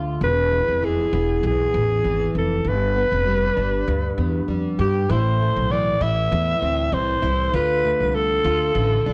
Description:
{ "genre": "acoustic pop", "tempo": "98 BPM", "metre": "4/4", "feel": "swing 55% on 16ths", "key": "A minor", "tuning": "A4 = 440 Hz", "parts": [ { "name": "flamenco guitar", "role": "accompaniment", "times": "0.0-9.1 s", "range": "E2 to G4", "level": "-28 LUFS", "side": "equal", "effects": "double-tracked" }, { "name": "upright bass", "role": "bass", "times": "0.0-9.1 s", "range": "E1 to G2", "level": "-26 LUFS", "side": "equal", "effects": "tube saturation" }, { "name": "raspy alto saxophone", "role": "melody", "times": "0.2-9.1 s", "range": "G4 to E5", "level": "-24 LUFS", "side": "equal", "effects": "none" } ], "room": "moderate studio reverb, RT60 0.7 s", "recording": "worn, warbling old tape, cassette tape, warbly pitch drift", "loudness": "-21 LUFS", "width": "mono", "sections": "0.0-5.1 A section; 5.1-9.1 B section", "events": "none", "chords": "0.2 E; 2.7 G; 5.1 Am; 7.5 Dm", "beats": "| 0.21 0.82 1.43 2.04 | 2.65 3.26 3.87 4.48 | 5.09 5.70 6.31 6.92 | 7.53 8.14 8.75" }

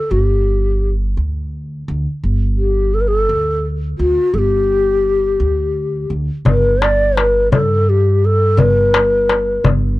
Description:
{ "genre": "Arabic maqam ensemble", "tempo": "57 BPM (dotted quarters)", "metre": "6/8", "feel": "straight", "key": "G maqam rast", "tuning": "A4 = 440 Hz", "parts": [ { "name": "breathy mellow low ney", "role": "melody", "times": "0.0-9.7 s", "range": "F4+49c to D5", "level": "-15 LUFS", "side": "left 1 dB", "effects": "none" }, { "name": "upright bass", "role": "bass", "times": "0.1-10.0 s", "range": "G1 to G2", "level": "-17 LUFS", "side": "equal", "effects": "none" }, { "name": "darbuka", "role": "percussion", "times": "6.5-9.8 s", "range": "none", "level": "-16 LUFS", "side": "left 3 dB", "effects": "none" } ], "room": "small room ambience", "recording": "dry, close 1970s-style studio recording", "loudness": "-13 LUFS", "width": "side -17 dB against mid", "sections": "0.0-6.5 A section; 6.5-10.0 B section", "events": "none", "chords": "none", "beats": "| 0.12 1.18 | 2.23 3.29 | 4.35 5.41 | 6.47 7.53 | 8.59 9.65" }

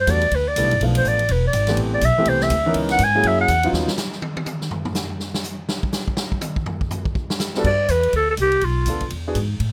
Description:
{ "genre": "jazz, small-group swing and bop", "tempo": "246 BPM", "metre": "4/4", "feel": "swing 60% on 8ths", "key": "G major", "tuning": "A4 = 440 Hz", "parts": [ { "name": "growling clarinet", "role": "melody", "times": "0.0-3.7, 7.7-9.1 s", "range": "F4 to G#5", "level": "-21 LUFS", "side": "equal", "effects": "none" }, { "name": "upright bass", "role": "bass", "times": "0.0-3.9, 7.6-9.7 s", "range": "E1 to A2", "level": "-24 LUFS", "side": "equal", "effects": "none" }, { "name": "warm grand piano", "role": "accompaniment", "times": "0.1-3.9, 7.6-9.4 s", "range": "E3 to Bb4", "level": "-26 LUFS", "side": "equal", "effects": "none" }, { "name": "swinging big-band drum kit", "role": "drums", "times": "0.1-9.7 s", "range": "crash cymbal, hi-hat, kick drum, ride cymbal, snare drum, toms", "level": "-28 LUFS", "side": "equal", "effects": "none" } ], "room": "little or no reverb", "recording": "none", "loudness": "-20 LUFS", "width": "mono", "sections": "0.0-7.6 A section; 7.6-9.7 B section", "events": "clarinet solo 0.0-7.6; drum solo 3.7-7.6", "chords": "0.0 Gmaj7; 0.8 Bm7b5; 1.3 E7; 1.8 Am7; 2.8 C#m7; 3.3 F#7; 3.7 B; 4.7 N.C.; 5.7 Gmaj7; 7.6 G; 8.6 Bm7b5; 9.1 E7", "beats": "0.08 0.32 0.57 | 0.81 1.05 1.30 1.54 | 1.79 2.03 2.28 2.52 | 2.77 3.01 3.25 3.50 | 3.74 3.99 4.23 4.48 | 4.72 4.96 5.21 5.45 | 5.70 5.94 6.18 6.43 | 6.67 6.92 7.16 7.41 | 7.65 7.89 8.14 8.38 | 8.63 8.87 9.12 9.36 | 9.61" }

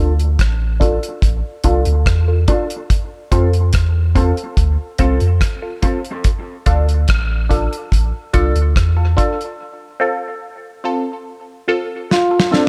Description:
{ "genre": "dub reggae", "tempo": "72 BPM", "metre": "4/4", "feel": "straight", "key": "D minor", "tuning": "A4 = 445 Hz", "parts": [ { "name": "mellow electric guitar", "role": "accompaniment", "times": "0.0-6.0 s", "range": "C4 to A4", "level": "-27 LUFS", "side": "equal", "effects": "lush chorus, low-pass filter, tape echo" }, { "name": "filtered dub chord stab", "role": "stabs", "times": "0.0-12.7 s", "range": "C4 to A4", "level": "-24 LUFS", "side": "equal", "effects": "phaser, low-pass filter, tape echo" }, { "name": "soft dub sub bass", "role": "bass", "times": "0.0-9.2 s", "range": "A1 to F2", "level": "-17 LUFS", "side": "equal", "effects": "none" }, { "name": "damped 70s drum kit", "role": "drums", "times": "0.2-12.7 s", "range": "hi-hat, kick drum, rim click, snare drum", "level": "-19 LUFS", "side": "equal", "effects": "none" }, { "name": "dark trombone", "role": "melody", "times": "12.1-12.7 s", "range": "D4 to F4", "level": "-16 LUFS", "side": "equal", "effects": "tape echo" } ], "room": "light reverb, small room ambience", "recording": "none", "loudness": "-17 LUFS", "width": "mono", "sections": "0.0-12.7 A section", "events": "filter sweep 0.0-12.7; break 9.6-12.7; drum fill 12.1-12.7", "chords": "0.0 Dm; 2.9 F; 6.2 Dm; 9.6 F", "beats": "0.39 1.23 2.06 | 2.90 3.74 4.57 5.41 | 6.25 7.08 7.92 8.76 | 9.59 10.43 11.27 12.10" }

